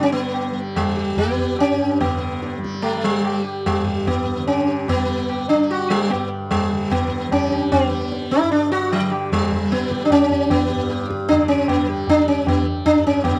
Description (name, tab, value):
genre	indian classical, Hindustani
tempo	149 BPM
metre	7/4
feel	straight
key	unclear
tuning	A4 = 438 Hz
part	sitar	melody	0.0-13.4 s	F#3 to G4	-21 LUFS	equal	none
part	tanpura	drone	0.0-13.4 s	G2 to G3	-32 LUFS	equal	none
part	tabla	percussion	0.3-13.4 s	none	-28 LUFS	equal	none
room	small room ambience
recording	dry, close 1970s-style studio recording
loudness	-20 LUFS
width	mono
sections	0.0-2.0 A section; 2.0-13.2 B section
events	speeding up 0.0-13.4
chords	none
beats	0.34 0.75 1.17 1.59 | 2.00 2.42 2.83 3.24 3.65 4.07 4.47 | 4.88 5.29 5.70 6.10 6.51 6.91 7.32 | 7.72 8.12 8.52 8.92 9.32 9.71 10.11 | 10.51 10.90 11.29 11.68 12.07 12.46 12.85 | 13.24